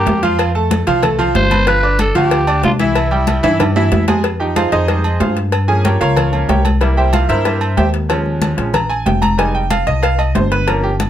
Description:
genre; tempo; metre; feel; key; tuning
latin, salsa; 187 BPM; 4/4; straight; F minor; A4 = 438 Hz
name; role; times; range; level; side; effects
growling tenor saxophone; melody; 0.0-3.9 s; E4 to C5; -17 LUFS; right 1 dB; none
bright concert grand piano; accompaniment; 0.0-10.9 s; E3 to D6; -17 LUFS; right 2 dB; none
upright bass; bass; 0.0-11.1 s; F1 to G2; -17 LUFS; equal; none
congas; percussion; 0.1-11.1 s; none; -22 LUFS; left 4 dB; none
cowbell; percussion; 0.1-11.1 s; none; -23 LUFS; left 7 dB; none
timbales and agogo bells; percussion; 0.1-11.1 s; none; -22 LUFS; right 5 dB; none
room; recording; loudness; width
light reverb; close, detailed microphones; -12 LUFS; side -11 dB against mid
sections
0.0-4.2 A section; 4.2-11.1 B section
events
drum fill 3.4-4.2; grand piano solo 4.2-11.1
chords
0.4 F; 1.7 G7; 3.0 C; 4.2 Fm7; 5.5 Gm7b5; 6.8 C7; 8.1 Eb7sus4; 9.4 Fm7

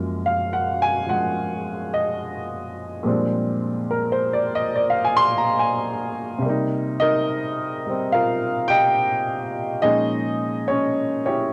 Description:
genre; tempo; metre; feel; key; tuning
solo jazz; 71 BPM; 4/4; swing 69% on 8ths; C minor from 6.4 s; A4 = 440 Hz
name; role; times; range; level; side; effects
warm upright piano; solo; 0.0-11.5 s; Gb2 to C6; -19 LUFS; equal; none
room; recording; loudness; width
moderate booth ambience, RT60 0.2 s; home recording on cassette; -19 LUFS; side -31 dB against mid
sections
0.0-6.4 A section; 6.4-11.5 B section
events
upright piano solo 0.0-6.4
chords
0.0 Gbmaj9; 3.0 Bb13; 6.4 Cm7; 9.8 Bbm7

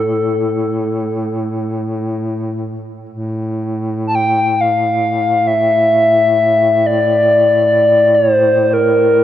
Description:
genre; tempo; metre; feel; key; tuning
caucasian folk, Caucasian lament; free time; none; none; A phrygian; A4 = 440 Hz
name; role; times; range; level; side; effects
reedy FM lead; melody; 0.0-9.2 s; A4 to A5; -12 LUFS; left 1 dB; chorus
warm duduk; drone; 0.0-9.2 s; A2; -19 LUFS; equal; none
room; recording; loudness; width
wet cathedral reverb, RT60 5.7 s; dark, warm production; -12 LUFS; side -11 dB against mid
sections
0.0-3.1 A section; 3.1-9.2 A section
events
none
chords
none

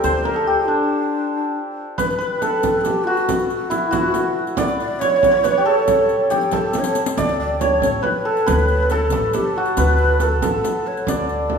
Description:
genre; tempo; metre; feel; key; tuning
Persian modal ensemble; 92 BPM (dotted quarters); 6/8; straight; unclear; A4 = 440 Hz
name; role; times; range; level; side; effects
santur; melody; 0.0-11.6 s; D4 to D5; -19 LUFS; right 1 dB; none
breathy low ney; second line; 0.0-11.6 s; D4 to E5; -23 LUFS; left 2 dB; none
upright bass; bass; 0.0-0.5, 7.2-11.6 s; A1 to D2; -22 LUFS; equal; none
frame drum; percussion; 0.0-11.6 s; none; -26 LUFS; right 4 dB; none
riq; percussion; 0.0-11.3 s; none; -32 LUFS; left 5 dB; none
room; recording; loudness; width
wet recital hall reverb, RT60 1.6 s; minimal, uncompressed stereo recording; -16 LUFS; side -6 dB against mid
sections
0.0-2.0 A section; 2.0-11.6 B section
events
break 0.7-2.0; drum fill 6.7-7.2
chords
none

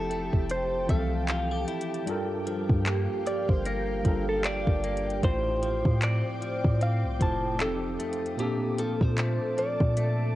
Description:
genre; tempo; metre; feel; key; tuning
contemporary R&B; 76 BPM; 4/4; swing 58% on 16ths; F major; A4 = 439 Hz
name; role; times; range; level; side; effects
direct-recorded clean electric guitar; melody; 0.0-10.4 s; G4 to A5; -32 LUFS; equal; phaser, cassette tape, tape echo
mellow tine electric piano; accompaniment; 0.0-10.4 s; A2 to C5; -33 LUFS; equal; overdrive, medium stereo tremolo, cassette tape
ethereal airy pad; sustained chords; 0.0-10.4 s; G4 to D6; -36 LUFS; right 2 dB; ensemble chorus, built-in reverb, cassette tape
direct-recorded clean electric guitar; arpeggios; 0.0-10.4 s; F2 to G4; -36 LUFS; left 4 dB; analog chorus, cassette tape, tape echo
warm 808-style bass; bass; 0.0-10.3 s; F1 to Bb2; -29 LUFS; equal; none
smooth R&B drum kit; drums; 0.1-10.2 s; handclaps, hi-hat, kick drum; -27 LUFS; equal; cassette tape
room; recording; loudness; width
light reverb; home recording on cassette; -25 LUFS; side -15 dB against mid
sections
0.0-10.4 A section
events
none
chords
0.0 Fmaj9; 2.1 Gm7; 5.2 Dm7/A; 7.6 F7; 8.4 Bbmaj7

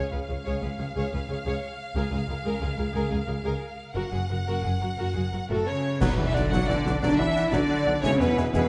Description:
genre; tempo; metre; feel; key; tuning
cinematic, heroic adventure film score; 119 BPM (dotted quarters); 12/8; straight; unclear; A4 = 439 Hz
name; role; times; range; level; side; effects
rich symphonic violin section; melody; 0.0-8.7 s; A4 to F#5; -37 LUFS; equal; none
rich symphonic violin section; second line; 0.0-8.7 s; G#4 to F#5; -39 LUFS; equal; none
rich studio viola section; accompaniment; 0.0-8.7 s; E3 to G#4; -36 LUFS; equal; none
rich symphonic cello section; bass; 0.1-8.7 s; C#2 to F#3; -34 LUFS; equal; none
rich symphonic double bass section; bass; 0.1-8.6 s; F#1 to E2; -34 LUFS; equal; none
mellow hollow silver concert flute; second line; 5.5-8.7 s; A4 to F#5; -35 LUFS; equal; none
mellow French horn section; sustained chords; 5.5-8.7 s; A3 to F#4; -30 LUFS; equal; none
mellow cor anglais; second line; 6.0-8.6 s; F#5 to G#5; -38 LUFS; equal; none
warm clarinet; second line; 6.0-8.6 s; D5 to E5; -41 LUFS; equal; none
warm tuba; bass; 6.0-8.6 s; E1 to B1; -35 LUFS; equal; none
concert snare drum, clash cymbals and concert bass drum; drums; 6.0-8.7 s; none; -36 LUFS; equal; none
clash cymbals and concert bass drum; percussion; 6.0-6.7 s; none; -35 LUFS; equal; none
timpani; percussion; 6.0-6.5 s; B2; -34 LUFS; equal; none
room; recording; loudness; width
moderate scoring stage reverb, RT60 1.6 s; nothing above 10.5 kHz; -27 LUFS; mono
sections
0.0-6.0 A section; 6.0-8.7 B section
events
band accent 6.0-6.4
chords
0.0 C#; 4.0 F#; 6.0 Bm; 8.0 E

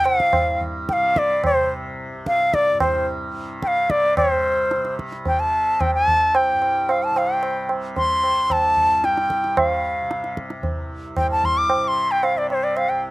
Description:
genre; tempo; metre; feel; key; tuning
indian classical, Hindustani; 111 BPM; 5/4; straight; C raga durga; A4 = 441 Hz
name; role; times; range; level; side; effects
bright reedy bansuri; melody; 0.0-13.0 s; C5 to D6; -18 LUFS; equal; none
tanpura; drone; 0.0-13.1 s; C2 to C3; -31 LUFS; equal; none
tabla; percussion; 0.1-13.0 s; none; -24 LUFS; right 2 dB; none
room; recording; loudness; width
little or no reverb; recorded outdoors, with no room sound; -18 LUFS; side -19 dB against mid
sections
0.0-4.2 A section; 4.2-13.1 B section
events
speeding up 0.0-13.1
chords
none

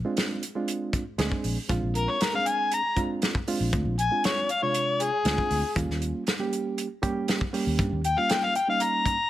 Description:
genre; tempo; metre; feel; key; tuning
straight-eighth soul blues; 118 BPM; 4/4; straight; Bb mixolydian; A4 = 440 Hz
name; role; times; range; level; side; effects
reed electric piano; accompaniment; 0.0-9.2 s; C3 to Ab4; -30 LUFS; right 3 dB; overdrive
warm soul drum kit; drums; 0.2-9.2 s; hi-hat, kick drum, snare drum; -29 LUFS; equal; none
vintage muted fingered electric bass; bass; 1.2-8.1 s; Bb1 to G2; -28 LUFS; equal; none
overdriven harmonica; melody; 2.0-9.3 s; Ab4 to Bb5; -25 LUFS; left 2 dB; none
room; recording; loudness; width
light reverb, small room ambience; none; -24 LUFS; side -13 dB against mid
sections
0.0-9.3 A section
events
none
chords
0.0 Bb9; 5.8 Eb9

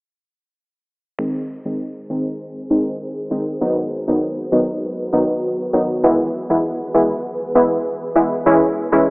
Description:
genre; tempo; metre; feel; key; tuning
dancehall; 99 BPM; 4/4; straight; unclear; A4 = 440 Hz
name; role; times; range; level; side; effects
analog pluck; accompaniment; 1.2-9.0 s; D#3 to E4; -17 LUFS; equal; chorus, low-pass filter
ethereal airy pad; sustained chords; 2.0-9.1 s; D#3 to C#5; -25 LUFS; equal; ensemble chorus, built-in reverb, low-pass filter
room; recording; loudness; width
wet lush hall reverb, RT60 2.6 s; rough home demo mix, telephone sound; -17 LUFS; side -32 dB against mid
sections
1.2-9.1 A section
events
none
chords
1.2 G#; 3.6 B; 6.0 E; 8.5 C#m

